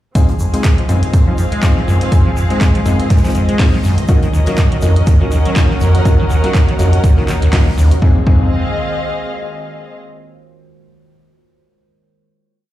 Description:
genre	acid house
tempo	122 BPM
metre	4/4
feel	swing 56% on 16ths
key	F phrygian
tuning	A4 = 441 Hz
part	warbly tape-like pad	sustained chords	0.5-8.3 s	Eb3 to Db5	-24 LUFS	right 2 dB	chorus, built-in reverb, sidechain pumping
part	acid bass, saw	riff	0.2-8.5 s	Db2 to Ab3	-15 LUFS	equal	tube saturation, analog chorus, sidechain pumping, tape echo
part	clear concert grand piano	stabs	0.2-8.5 s	Bb3 to Ab4	-23 LUFS	left 4 dB	tape echo
part	electronic kick drum	drums	0.2-8.4 s	none	-12 LUFS	equal	none
part	modern studio drum kit	drums	0.2-8.0 s	hi-hat, shaker, snare drum	-33 LUFS	equal	sidechain pumping on hats, high-pass filter on hats, high-pass filter on snare, sidechain pumping on perc, high-pass filter on perc, high-pass filter on room
part	punchy analog drum machine	drums	0.2-8.0 s	handclaps, hi-hat	-25 LUFS	right 1 dB	none
part	muted studio string section	texture	0.2-9.9 s	C4 to Gb5	-23 LUFS	left 1 dB	sidechain pumping
room	moderate small room reverb, RT60 0.5 s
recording	played on a big sound system in a bare room, large studio reverb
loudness	-11 LUFS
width	side -14 dB against mid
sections	0.2-8.0 groove; 8.0-10.0 final chord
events	band accent 7.5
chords	0.2 Fm7; 4.1 Ebm7; 8.0 Fm7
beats	| 0.15 0.64 1.14 1.63 | 2.12 2.61 3.10 3.60 | 4.09 4.58 5.07 5.56 | 6.05 6.55 7.04 7.53 | 8.02 8.51 9.01 9.50

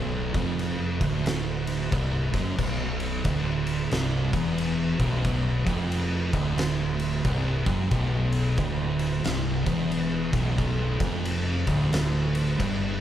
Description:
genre	stoner and doom metal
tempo	90 BPM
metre	4/4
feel	swing 62% on 8ths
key	B phrygian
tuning	A4 = 441 Hz
part	thick fuzz guitar	riff	0.0-13.0 s	B1 to G2	-28 LUFS	left 4 dB	distortion
part	thick fuzz guitar	riff	0.0-13.0 s	B1 to G2	-28 LUFS	right 5 dB	distortion
part	fingered electric bass	bass	0.0-13.0 s	B0 to G1	-32 LUFS	equal	overdrive
part	oversized low-tuned drum kit	drums	0.3-12.8 s	crash cymbal, kick drum, ride cymbal, snare drum	-30 LUFS	equal	none
room	moderate large studio reverb, RT60 1.2 s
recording	band playing live in one room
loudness	-23 LUFS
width	side -11 dB against mid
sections	0.0-13.0 A section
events	none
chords	0.0 Bm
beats	0.59 1.25 1.92 | 2.58 3.25 3.92 4.58 | 5.25 5.91 6.58 7.25 | 7.91 8.58 9.25 9.92 | 10.59 11.25 11.92 12.59

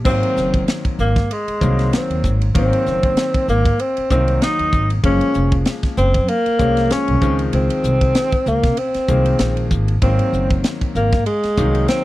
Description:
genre	electric jazz fusion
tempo	96 BPM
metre	4/4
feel	swing 56% on 16ths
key	Ab mixolydian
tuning	A4 = 440 Hz
part	bright grand piano	accompaniment	0.0-12.0 s	Db3 to Eb4	-23 LUFS	left 3 dB	none
part	upright bass	bass	0.0-11.9 s	F1 to Db3	-19 LUFS	equal	none
part	mellow tenor saxophone	melody	0.1-12.0 s	Ab3 to Eb4	-19 LUFS	equal	none
part	tight funk drum kit	drums	0.1-12.0 s	crash cymbal, hi-hat, kick drum, ride cymbal, snare drum	-20 LUFS	equal	none
room	small room ambience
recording	dry, close 1970s-style studio recording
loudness	-15 LUFS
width	side -16 dB against mid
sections	0.1-12.0 A section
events	none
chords	0.1 Ab7; 5.0 Gbmaj7; 7.2 Dbmaj7; 10.0 Ab7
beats	| 0.05 0.68 1.30 1.92 | 2.55 3.17 3.79 4.41 | 5.04 5.66 6.28 6.91 | 7.53 8.15 8.78 9.40 | 10.02 10.64 11.27 11.89

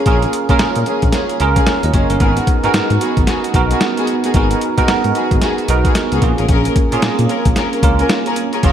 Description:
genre	R&B, new jack swing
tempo	112 BPM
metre	4/4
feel	swing 61% on 16ths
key	unclear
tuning	A4 = 441 Hz
part	bell-like tine electric piano	accompaniment	0.0-8.7 s	A#3 to D#5	-18 LUFS	right 5 dB	analog chorus
part	dark studio string section	stabs	0.0-8.7 s	A#3 to A#4	-20 LUFS	left 3 dB	none
part	smooth synth bass	bass	0.1-8.7 s	F#1 to A#2	-18 LUFS	left 1 dB	none
part	boom bap sampler-style drum kit	drums	0.1-8.7 s	hi-hat, kick drum, snare drum	-16 LUFS	left 1 dB	none
room	light reverb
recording	bright 1980s-style digital production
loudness	-12 LUFS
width	side -9 dB against mid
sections	0.0-8.7 A section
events	none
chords	0.0 A#m7; 2.2 G#m7; 6.2 A#m7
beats	| 0.06 0.60 1.13 1.67 | 2.20 2.74 3.27 3.81 | 4.35 4.88 5.42 5.95 | 6.49 7.03 7.56 8.10 | 8.63

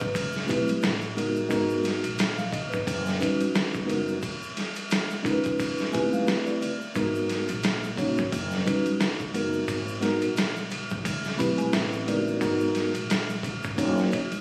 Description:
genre	hip hop, jazz-hop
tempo	88 BPM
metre	4/4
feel	swing 57% on 16ths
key	unclear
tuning	A4 = 440 Hz
part	mellow tine electric piano	accompaniment	0.0-14.2 s	G3 to B5	-29 LUFS	equal	none
part	upright bass	bass	0.0-14.1 s	F#1 to D#2	-36 LUFS	equal	none
part	trip hop sampler-style drum kit	drums	0.0-14.4 s	hi-hat, kick drum, ride cymbal, snare drum	-31 LUFS	equal	none
part	tube shaker and congas	percussion	0.1-14.4 s	none	-41 LUFS	equal	none
room	light reverb, digital ambience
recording	recorded on a phone in the room, studio reverb, vinyl crackle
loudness	-27 LUFS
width	mono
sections	0.0-14.4 A section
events	tine electric piano fill 5.6-7.0, 11.0-12.4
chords	0.1 Am9; 0.8 Asus2; 1.5 G#m9; 2.9 D#m7/F#; 3.5 D#7alt; 4.2 G#m; 5.6 C#9; 6.3 Am9; 7.0 G#m9; 8.3 D#m7/F#; 9.0 D#m; 9.7 G#m9; 11.0 Am9; 12.4 G#m9; 13.8 D#m7/F#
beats	0.14 0.82 | 1.50 2.19 2.87 3.55 | 4.23 4.91 5.59 6.28 | 6.96 7.64 8.32 9.00 | 9.69 10.37 11.05 11.73 | 12.41 13.09 13.78

